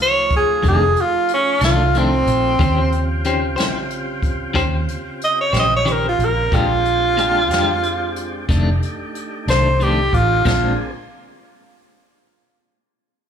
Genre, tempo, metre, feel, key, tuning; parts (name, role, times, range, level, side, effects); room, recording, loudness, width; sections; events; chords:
slow blues; 61 BPM (dotted quarters); 12/8; straight; A4 = 441 Hz
breathy tenor saxophone; melody; 0.0-10.8 s; C4 to Eb5; -17 LUFS; right 1 dB; slapback echo
tonewheel organ; sustained chords; 0.0-10.9 s; Db3 to Ab4; -28 LUFS; right 2 dB; slow rotary speaker
vintage muted fingered electric bass; bass; 0.0-10.8 s; F1 to F2; -20 LUFS; equal
jazz brush drum kit; drums; 0.3-10.6 s; crash cymbal, hi-hat, kick drum, snare drum; -24 LUFS; equal
clean electric guitar; accompaniment; 0.6-10.7 s; F2 to C5; -23 LUFS; left 4 dB; tremolo, slapback echo
studio reverb; live gig heard through the venue's PA, club ambience; -15 LUFS; side -8 dB against mid
0.0-10.4 A section; 10.4-13.3 B section
0.0 F13; 2.6 Eb13; 6.5 Bb13; 8.5 F13; 10.4 Bb9